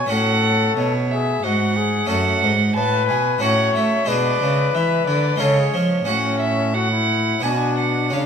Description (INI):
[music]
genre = classical, baroque-style sonata movement with continuo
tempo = 90 BPM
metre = 3/4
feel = rubato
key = F# minor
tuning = A4 = 442 Hz
[part]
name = dark trumpet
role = melody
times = 0.0-8.3 s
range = C#4 to C#5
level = -23 LUFS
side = left 9 dB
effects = none
[part]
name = warm violin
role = second line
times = 0.0-8.3 s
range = C#5 to A5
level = -22 LUFS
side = right 7 dB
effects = none
[part]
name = harpsichord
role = accompaniment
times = 0.0-8.3 s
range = F#2 to G#4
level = -24 LUFS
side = left 1 dB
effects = none
[part]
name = dark cello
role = bass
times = 0.0-8.3 s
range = F#2 to A3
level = -22 LUFS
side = right 2 dB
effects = none
[sound]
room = moderate recital hall reverb, RT60 1.4 s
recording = none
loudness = -16 LUFS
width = side -7 dB against mid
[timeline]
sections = 0.0-8.3 A section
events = none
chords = 0.1 F#m/A; 2.1 F#m; 3.4 F#m/A; 4.1 G#dim/B; 5.4 C#; 6.1 F#m/A; 7.4 Bm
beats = | 0.10 0.77 1.43 | 2.09 2.76 3.42 | 4.09 4.75 5.41 | 6.08 6.75 7.43 | 8.13